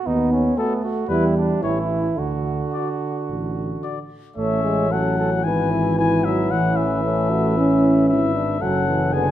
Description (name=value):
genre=classical, brass quintet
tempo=112 BPM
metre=4/4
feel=rubato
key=D major, A major from 4.4 s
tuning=A4 = 440 Hz
part: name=mellow flugelhorn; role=second line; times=0.0-9.3 s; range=B3 to C#5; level=-27 LUFS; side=right 4 dB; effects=none
part: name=warm euphonium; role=accompaniment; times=0.1-9.3 s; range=D3 to C#4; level=-22 LUFS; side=right 1 dB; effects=none
part: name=mellow tuba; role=bass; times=0.1-9.3 s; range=F#1 to E2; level=-24 LUFS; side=right 1 dB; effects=none
part: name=warm trumpet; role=melody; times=0.6-9.3 s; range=A4 to G#5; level=-26 LUFS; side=left 8 dB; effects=none
part: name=mellow French horn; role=accompaniment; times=0.6-9.3 s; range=B3 to G4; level=-26 LUFS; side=left 4 dB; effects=none
room=wet recital hall reverb, RT60 1.6 s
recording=none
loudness=-18 LUFS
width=side -12 dB against mid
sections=0.0-4.4 A section; 4.4-9.3 B section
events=none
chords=0.1 B7/D#; 1.1 Em; 1.6 A7; 2.2 D; 4.4 A; 5.4 E/G#; 6.5 A; 8.6 F#m